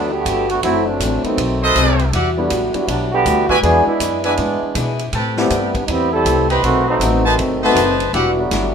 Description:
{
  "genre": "jazz, big band swing",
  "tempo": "160 BPM",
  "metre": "4/4",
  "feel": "swing 64% on 8ths",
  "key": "unclear",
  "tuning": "A4 = 438 Hz",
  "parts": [
    { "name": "mellow trombone section", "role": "second line", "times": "0.0-8.7 s", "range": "C3 to A4", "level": "-18 LUFS", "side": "right 2 dB", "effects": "none" },
    { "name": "picked old ladder-braced acoustic guitar", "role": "accompaniment", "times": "0.0-8.7 s", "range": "F#2 to B4", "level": "-24 LUFS", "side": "left 4 dB", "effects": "none" },
    { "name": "upright bass", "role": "bass", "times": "0.0-8.7 s", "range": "E1 to B2", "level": "-22 LUFS", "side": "equal", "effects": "none" },
    { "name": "vintage drum kit", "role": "drums", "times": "0.3-8.6 s", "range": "hi-hat, kick drum, ride cymbal, snare drum", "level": "-27 LUFS", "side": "right 1 dB", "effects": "none" },
    { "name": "warm baby grand piano", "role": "accompaniment", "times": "0.6-8.4 s", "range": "Eb3 to G4", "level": "-21 LUFS", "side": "left 3 dB", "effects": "none" },
    { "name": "clear trumpet section", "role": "stabs", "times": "1.6-8.3 s", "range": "G4 to B5", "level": "-18 LUFS", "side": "equal", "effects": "none" }
  ],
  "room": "moderate club reverb, RT60 0.8 s",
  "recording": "minimal, uncompressed stereo recording",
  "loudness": "-14 LUFS",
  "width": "side -7 dB against mid",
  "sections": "0.0-8.7 A section",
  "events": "trombone section solo 0.0-8.7",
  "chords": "0.0 Gmaj9; 0.6 F#m7b5; 1.4 B7b9; 2.1 Em9; 3.6 E7; 5.1 Am9; 6.6 B7b9; 8.1 Em9"
}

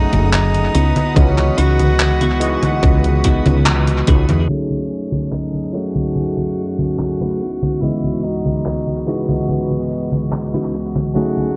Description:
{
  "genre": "vaporwave",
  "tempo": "72 BPM",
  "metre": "4/4",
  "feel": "straight",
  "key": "unclear",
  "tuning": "A4 = 441 Hz",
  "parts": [
    { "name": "breathy tenor saxophone", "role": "melody", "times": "0.0-11.6 s", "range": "B3 to F#4", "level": "-27 LUFS", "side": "equal", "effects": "tape echo" },
    { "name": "overdriven tine electric piano", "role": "accompaniment", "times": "0.0-11.6 s", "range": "C#2 to D#5", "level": "-24 LUFS", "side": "equal", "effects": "subtle chorus, dub echo" },
    { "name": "rich chamber string section", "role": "sustained chords", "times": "0.0-11.6 s", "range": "C#2 to D#6", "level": "-33 LUFS", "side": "equal", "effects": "none" },
    { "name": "clean electric guitar", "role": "riff", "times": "0.0-11.5 s", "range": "A3 to B4", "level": "-28 LUFS", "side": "equal", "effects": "lush chorus, low-pass filter, dub echo" },
    { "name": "woody fretless electric bass", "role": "bass", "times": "0.0-4.5 s", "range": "F#1 to E2", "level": "-18 LUFS", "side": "equal", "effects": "none" },
    { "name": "detuned 8-bit digital drum machine", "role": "drums", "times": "0.1-11.5 s", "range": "congas, handclaps, hi-hat", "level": "-23 LUFS", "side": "equal", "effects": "low-pass filter on hats, low-pass filter on perc, low-pass filter on snare, dub echo" },
    { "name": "electronic kick drum", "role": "drums", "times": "1.2-4.2 s", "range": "none", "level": "-16 LUFS", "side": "equal", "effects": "none" }
  ],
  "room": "light reverb",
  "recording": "echo-heavy mix, cassette tape, low-pass filter, nothing above 10.6 kHz",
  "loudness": "-17 LUFS",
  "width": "mono",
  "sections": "0.0-4.5 A section; 4.5-11.6 B section",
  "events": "band accent 3.7-4.1; filter sweep on drum 4.5-11.6; filter sweep on clean electric guitar 4.5-11.6; filter sweep 4.5-11.6",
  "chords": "0.0 F#m69; 0.7 C#m11; 4.5 F#m69; 7.4 C#m11"
}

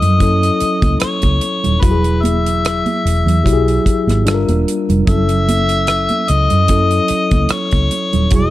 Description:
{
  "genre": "lush 1970s-style soul",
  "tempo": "74 BPM",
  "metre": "4/4",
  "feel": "swing 54% on 16ths",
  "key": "F# dorian",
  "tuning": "A4 = 440 Hz",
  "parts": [
    { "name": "mellow harmonica", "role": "melody", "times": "0.0-8.5 s", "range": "B4 to E5", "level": "-18 LUFS", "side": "left 3 dB", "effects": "none" },
    { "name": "mellow tine electric piano", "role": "accompaniment", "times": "0.0-8.5 s", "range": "F#3 to Bb4", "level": "-18 LUFS", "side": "left 1 dB", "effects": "slow stereo tremolo" },
    { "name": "vintage muted fingered electric bass", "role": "bass", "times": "0.0-8.5 s", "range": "D#1 to F#2", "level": "-16 LUFS", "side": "equal", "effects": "none" },
    { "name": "damped 70s drum kit", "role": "drums", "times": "0.0-8.5 s", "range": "hi-hat, kick drum, rim click", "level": "-18 LUFS", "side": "equal", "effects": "none" },
    { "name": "congas", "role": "percussion", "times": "0.0-8.5 s", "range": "none", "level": "-23 LUFS", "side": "right 4 dB", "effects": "none" }
  ],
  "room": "small room ambience",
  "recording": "none",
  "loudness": "-12 LUFS",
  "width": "side -15 dB against mid",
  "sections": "0.0-8.5 A section",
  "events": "none",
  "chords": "0.0 F#m7; 1.8 Eadd9; 4.3 Gm7; 5.1 F#m7"
}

